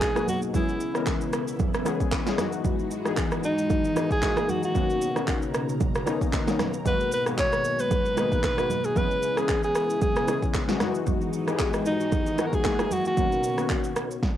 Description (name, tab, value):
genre	amapiano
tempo	114 BPM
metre	4/4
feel	swing 55% on 16ths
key	unclear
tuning	A4 = 440 Hz
part	breathy alto saxophone	melody	0.0-13.8 s	D#4 to C#5	-26 LUFS	equal	cassette tape, tape echo
part	warm analog keys	accompaniment	0.0-14.2 s	D#3 to B5	-30 LUFS	left 7 dB	chorus, cassette tape
part	string machine, cellos	sustained chords	0.0-14.2 s	B2 to A#5	-33 LUFS	right 1 dB	phaser, ensemble chorus, sidechain pumping, cassette tape
part	deep house drum kit	drums	0.0-14.4 s	handclaps, kick drum, rim click, shaker, snare drum	-27 LUFS	right 1 dB	overdrive, cassette tape
part	bongos and congas	percussion	0.0-13.8 s	none	-33 LUFS	right 9 dB	none
room	light reverb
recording	home recording on cassette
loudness	-23 LUFS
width	side -11 dB against mid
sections	0.0-14.4 A section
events	synth keys fill 1.6-2.6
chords	0.0 G#m9; 0.5 C#m7; 2.4 Emaj9; 4.2 F#13; 4.8 Bmaj9; 6.9 G#m9; 9.0 C#m7; 10.8 Emaj9; 12.6 F#13; 13.2 Bmaj9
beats	0.01 | 0.54 1.07 1.59 2.12 | 2.65 3.17 3.70 4.23 | 4.75 5.28 5.80 6.33 | 6.86 7.38 7.91 8.44 | 8.96 9.49 10.02 10.54 | 11.07 11.59 12.12 12.65 | 13.17 13.70 14.23